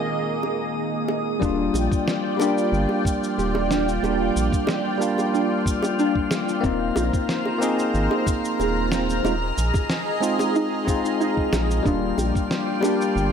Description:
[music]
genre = sunset chillout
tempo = 92 BPM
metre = 4/4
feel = straight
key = Eb major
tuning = A4 = 440 Hz
[part]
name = bell-like tine electric piano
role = accompaniment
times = 0.0-13.3 s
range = Eb3 to Ab4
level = -24 LUFS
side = moving between left 8 dB and right 7 dB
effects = auto-pan, ping-pong delay
[part]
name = lush unison pad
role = sustained chords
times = 0.0-13.3 s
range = Eb3 to Bb5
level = -26 LUFS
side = right 1 dB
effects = chorus, phaser
[part]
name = drifting glass-harmonics texture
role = texture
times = 0.0-13.3 s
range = Eb6 to F6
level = -35 LUFS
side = left 3 dB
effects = chorus, built-in reverb
[part]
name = bongos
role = percussion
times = 0.4-13.0 s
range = none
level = -30 LUFS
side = equal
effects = none
[part]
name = soft round pluck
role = arpeggios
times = 1.4-13.1 s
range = C4 to Ab4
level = -28 LUFS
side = right 1 dB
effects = ensemble chorus, ping-pong delay
[part]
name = round analog bass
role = bass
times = 1.4-13.3 s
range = Eb1 to Bb1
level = -26 LUFS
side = equal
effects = none
[part]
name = electronic cabasa and snare drum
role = drums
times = 1.4-13.3 s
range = none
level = -30 LUFS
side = equal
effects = none
[part]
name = electronic kick drum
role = drums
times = 1.4-12.5 s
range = none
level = -25 LUFS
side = equal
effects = none
[sound]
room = light reverb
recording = none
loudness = -20 LUFS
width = side -7 dB against mid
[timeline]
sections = 0.0-1.4 A section; 1.4-13.3 B section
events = none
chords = 0.0 Ab69/Eb; 1.4 Ebmaj9; 6.6 Ab69/Eb; 11.9 Ebmaj9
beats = 0.12 0.77 | 1.42 2.07 2.72 3.38 | 4.03 4.68 5.33 5.99 | 6.64 7.29 7.94 8.59 | 9.25 9.90 10.55 11.20 | 11.86 12.51 13.16

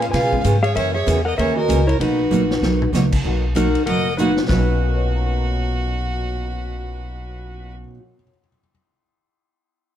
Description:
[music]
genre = country, western swing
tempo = 192 BPM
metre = 4/4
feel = swing 61% on 8ths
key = B major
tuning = A4 = 435 Hz
[part]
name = clean lap steel guitar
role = melody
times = 0.0-7.7 s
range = D#4 to G#5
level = -21 LUFS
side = left 2 dB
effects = none
[part]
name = clear fiddle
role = second line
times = 0.0-7.7 s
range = F#4 to E#5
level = -27 LUFS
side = right 3 dB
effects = none
[part]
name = honky-tonk upright piano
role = accompaniment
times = 0.0-8.7 s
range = A#2 to F#6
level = -30 LUFS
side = left 2 dB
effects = none
[part]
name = upright bass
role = bass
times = 0.0-7.8 s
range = F#1 to B2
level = -22 LUFS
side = equal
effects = none
[part]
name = vintage drum kit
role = drums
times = 0.0-4.6 s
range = crash cymbal, hi-hat, kick drum, ride cymbal, snare drum, toms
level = -27 LUFS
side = left 1 dB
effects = none
[part]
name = picked steel-string acoustic guitar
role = accompaniment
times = 0.1-8.0 s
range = B2 to G#4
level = -24 LUFS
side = right 4 dB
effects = none
[sound]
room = light reverb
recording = none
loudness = -17 LUFS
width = side -10 dB against mid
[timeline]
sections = 0.0-3.2 A section; 3.2-4.5 B section; 4.5-7.0 C section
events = drum fill 2.3-2.9, 4.2-4.5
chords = 0.0 C#7; 0.8 F#7; 2.0 Bmaj7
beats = 0.13 0.44 | 0.76 1.07 1.38 1.69 | 2.00 2.31 2.62 2.94 | 3.25 3.56 3.87 4.18 | 4.50 4.81 5.12 5.43 | 5.74 6.05 6.36 6.67

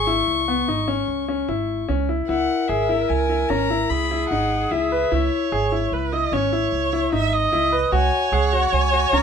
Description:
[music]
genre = contemporary instrumental, chamber music in an uneven meter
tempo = 149 BPM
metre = 7/4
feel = straight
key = C# dorian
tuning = A4 = 440 Hz
[part]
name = dark violin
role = melody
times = 0.0-9.2 s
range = E5 to C#6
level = -24 LUFS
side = left 6 dB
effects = none
[part]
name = bright baby grand piano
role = arpeggios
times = 0.0-9.2 s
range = B3 to B4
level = -23 LUFS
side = left 3 dB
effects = none
[part]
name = upright bass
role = bass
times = 0.0-9.2 s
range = G#1 to C#2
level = -25 LUFS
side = right 4 dB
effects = none
[part]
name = rich viola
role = second line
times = 2.3-9.2 s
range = G#4 to E5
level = -23 LUFS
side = right 3 dB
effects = none
[sound]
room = light reverb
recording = minimal, uncompressed stereo recording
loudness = -19 LUFS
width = side -7 dB against mid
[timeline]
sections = 0.0-2.3 A section; 2.3-9.2 B section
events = none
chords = 0.0 C#m; 7.9 F#sus2/C#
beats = 0.28 0.68 1.08 1.49 1.89 | 2.29 2.70 3.10 3.50 3.90 4.31 4.71 | 5.11 5.51 5.92 6.32 6.72 7.12 7.53 | 7.93 8.33 8.73 9.13

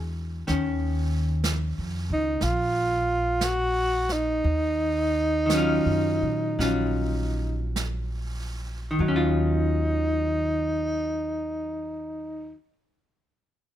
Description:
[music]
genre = jazz ballad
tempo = 48-62 BPM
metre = 4/4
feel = swing 67% on 8ths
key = Eb minor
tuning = A4 = 440 Hz
[part]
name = warm alto saxophone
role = melody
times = 0.0-12.5 s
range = Eb4 to Ab4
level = -26 LUFS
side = equal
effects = none
[part]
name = vintage hollow-body jazz guitar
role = accompaniment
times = 0.0-12.7 s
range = Eb3 to F#4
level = -27 LUFS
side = left 1 dB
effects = none
[part]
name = upright bass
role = bass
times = 0.0-12.5 s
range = Bb1 to Bb2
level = -28 LUFS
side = equal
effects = none
[part]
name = jazz brush drum kit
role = drums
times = 0.5-9.6 s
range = brushed snare drum, hi-hat, snare drum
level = -34 LUFS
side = right 4 dB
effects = none
[sound]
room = little or no reverb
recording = close, detailed microphones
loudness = -23 LUFS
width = side -11 dB against mid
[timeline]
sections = 0.0-9.0 A section; 9.0-13.8 B section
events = slowing down 0.5-9.0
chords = 0.5 Ebm9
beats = | 0.49 1.45 2.42 3.41 | 4.44 5.50 6.60 7.76 | 8.99 10.23 11.48 12.72

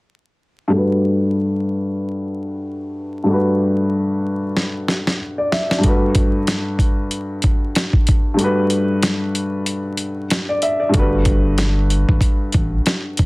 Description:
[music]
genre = hip hop, boom-bap hip-hop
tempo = 94 BPM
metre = 4/4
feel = swing 59% on 16ths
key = G major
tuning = A4 = 440 Hz
[part]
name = dark concert grand piano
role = accompaniment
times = 0.7-13.3 s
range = G2 to E5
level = -19 LUFS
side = left 1 dB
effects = high-pass filter, low-pass filter
[part]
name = dusty soul sampler-style drum kit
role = drums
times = 4.6-13.3 s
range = hi-hat, kick drum, snare drum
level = -17 LUFS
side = equal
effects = none
[part]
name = round analog bass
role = bass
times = 10.9-13.3 s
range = G1 to A1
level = -18 LUFS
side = equal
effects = none
[sound]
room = light reverb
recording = dense, heavily limited modern master, vinyl crackle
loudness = -16 LUFS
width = side -23 dB against mid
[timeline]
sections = 0.7-10.9 A section; 10.9-13.3 B section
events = filter sweep on grand piano 0.7-10.9; drum fill 4.6-5.8; kick muted 8.4-10.9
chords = 0.7 Gmaj7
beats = | 0.73 1.37 2.01 2.64 | 3.28 3.92 4.56 5.20 | 5.84 6.47 7.11 7.75 | 8.39 9.03 9.66 10.30 | 10.94 11.58 12.22 12.86

